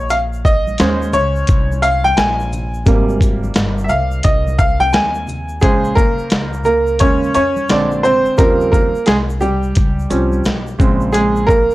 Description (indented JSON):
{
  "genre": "hip hop, jazz-hop",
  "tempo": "87 BPM",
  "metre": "4/4",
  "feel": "swing 63% on 16ths",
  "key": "Bb dorian",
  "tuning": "A4 = 438 Hz",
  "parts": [
    { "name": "bright baby grand piano", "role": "accompaniment", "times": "0.0-11.7 s", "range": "C3 to Ab5", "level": "-15 LUFS", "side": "right 1 dB", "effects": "none" },
    { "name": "upright bass", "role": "bass", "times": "0.0-11.7 s", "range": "G1 to F2", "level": "-21 LUFS", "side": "equal", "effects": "transformer saturation" },
    { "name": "dusty soul sampler-style drum kit", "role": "drums", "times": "0.1-11.7 s", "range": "hi-hat, kick drum, shaker, snare drum", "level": "-15 LUFS", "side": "equal", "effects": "none" },
    { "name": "tube shaker and congas", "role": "percussion", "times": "0.1-11.7 s", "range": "none", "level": "-32 LUFS", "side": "left 1 dB", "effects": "none" }
  ],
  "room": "small room ambience",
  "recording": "dry, gritty hardware recording, cassette tape",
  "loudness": "-12 LUFS",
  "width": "side -17 dB against mid",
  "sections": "0.0-5.6 A section; 5.6-11.7 B section",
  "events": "grand piano solo 0.0-5.6, 5.6-11.7",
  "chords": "0.0 Bbm9; 2.9 Abmaj9; 5.6 Bbm9; 7.7 Bb9; 8.4 Eb13; 10.8 Bbm9"
}